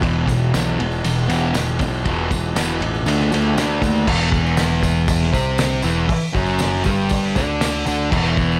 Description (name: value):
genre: garage rock duo or trio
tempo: 119 BPM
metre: 4/4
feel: straight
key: E minor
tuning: A4 = 440 Hz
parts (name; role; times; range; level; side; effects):
- thick fuzz guitar; riff; 0.0-8.6 s; E2 to D4; -21 LUFS; equal; distortion
- picked electric bass; bass; 0.0-8.6 s; E1 to D#2; -27 LUFS; equal; overdrive
- cloth-damped thuddy drum kit; drums; 0.0-8.5 s; crash cymbal, hi-hat, kick drum, ride cymbal, snare drum; -25 LUFS; equal; none
- tambourine; percussion; 0.0-8.6 s; none; -36 LUFS; equal; none
room: light reverb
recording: none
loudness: -19 LUFS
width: mono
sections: 0.0-4.1 A section; 4.1-8.6 B section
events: none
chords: 0.0 E5; 3.1 D5; 4.1 Em